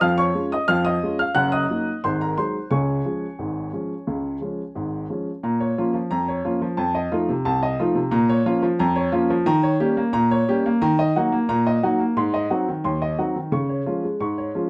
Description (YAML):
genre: ragtime piano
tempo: 89 BPM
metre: 2/4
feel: straight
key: Db major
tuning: A4 = 440 Hz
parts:
  - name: warm upright piano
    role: solo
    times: 0.0-14.7 s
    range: Gb1 to Gb6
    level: -22 LUFS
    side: equal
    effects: none
room: wet small room reverb, RT60 0.5 s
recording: rough home demo mix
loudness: -22 LUFS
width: mono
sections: 0.0-5.4 A section; 5.4-14.7 B section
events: none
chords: 0.0 Db/F; 1.4 Ebm/Gb; 2.0 Ab7; 2.7 Db; 5.4 Bbm; 6.8 F7; 8.1 Bbm; 9.5 Eb7; 10.8 D#m; 12.2 G#7; 13.5 C#